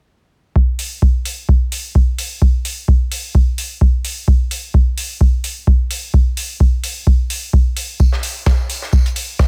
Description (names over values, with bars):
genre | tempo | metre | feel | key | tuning
acid house | 129 BPM | 4/4 | swing 56% on 16ths | none | none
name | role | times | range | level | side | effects
electronic kick drum | drums | 0.6-9.5 s | none | -15 LUFS | equal | none
electronic hi-hat | drums | 0.8-9.3 s | none | -28 LUFS | equal | none
big rock drum kit | drums | 8.0-9.5 s | hi-hat, snare drum, tambourine | -30 LUFS | equal | sidechain pumping on hats, high-pass filter on hats, high-pass filter on snare, sidechain pumping on perc, high-pass filter on perc, high-pass filter on room
room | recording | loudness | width
little or no reverb | none | -17 LUFS | mono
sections
0.6-9.5 A section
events
none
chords
none